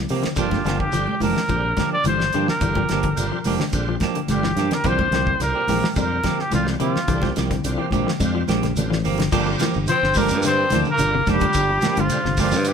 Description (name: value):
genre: afrobeat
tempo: 108 BPM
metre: 4/4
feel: straight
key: G dorian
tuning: A4 = 440 Hz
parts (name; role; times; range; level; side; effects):
- semi-hollow electric guitar; arpeggios; 0.0-12.7 s; C3 to G3; -28 LUFS; left 10 dB; none
- fingered electric bass; bass; 0.0-12.7 s; F1 to C3; -25 LUFS; equal; none
- semi-hollow electric guitar; stabs; 0.1-12.6 s; F3 to G4; -27 LUFS; right 7 dB; spring reverb
- damped 70s drum kit; drums; 0.1-12.7 s; crash cymbal, hi-hat, kick drum, snare drum; -27 LUFS; equal; none
- shekere; percussion; 0.1-12.7 s; none; -31 LUFS; right 2 dB; none
- breathy trumpet; melody; 0.4-12.7 s; F4 to D5; -22 LUFS; left 1 dB; none
- bright tonewheel organ; accompaniment; 0.4-12.7 s; D3 to G4; -32 LUFS; equal; slow rotary speaker, overdrive, chorus vibrato
- congas; percussion; 0.4-12.5 s; none; -28 LUFS; right 1 dB; none
- growling tenor saxophone; second line; 9.9-12.7 s; F3 to C4; -27 LUFS; right 3 dB; none
room: moderate stone room reverb, RT60 1.5 s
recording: band playing live in one room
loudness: -18 LUFS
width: side -7 dB against mid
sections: 0.0-9.3 A section; 9.3-12.7 B section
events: drum fill 8.2-9.3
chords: 0.4 Gm7; 4.9 C7sus4; 9.3 Gm7